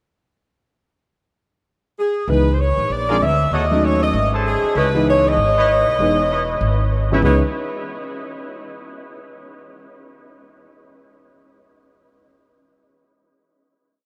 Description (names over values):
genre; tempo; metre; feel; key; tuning
jazz; 194 BPM; 4/4; swing 60% on 8ths; C# minor; A4 = 436 Hz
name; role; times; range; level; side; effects
warm saxophone section; melody; 2.0-7.4 s; B3 to E5; -22 LUFS; equal; none
warm upright piano; accompaniment; 2.3-7.4 s; C#2 to D#4; -26 LUFS; equal; none
upright bass; bass; 2.3-7.4 s; E1 to D#2; -23 LUFS; equal; none
warm trumpet section; stabs; 3.1-7.4 s; E4 to A5; -28 LUFS; equal; none
room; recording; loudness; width
wet huge ambient reverb, RT60 8.5 s; in a vast, echoing space; -18 LUFS; mono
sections
1.0-2.3 pickup bar; 2.3-7.2 A section; 7.2-8.5 final chord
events
none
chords
1.0 N.C.; 2.3 C#m9; 2.9 A#7; 3.5 D#m7b5; 4.1 G#; 4.8 C#m9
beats
| 1.04 1.35 1.66 1.97 | 2.28 2.59 2.90 3.21 | 3.52 3.83 4.14 4.45 | 4.76 5.07 5.38 5.68 | 5.99 6.30 6.61 6.92 | 7.23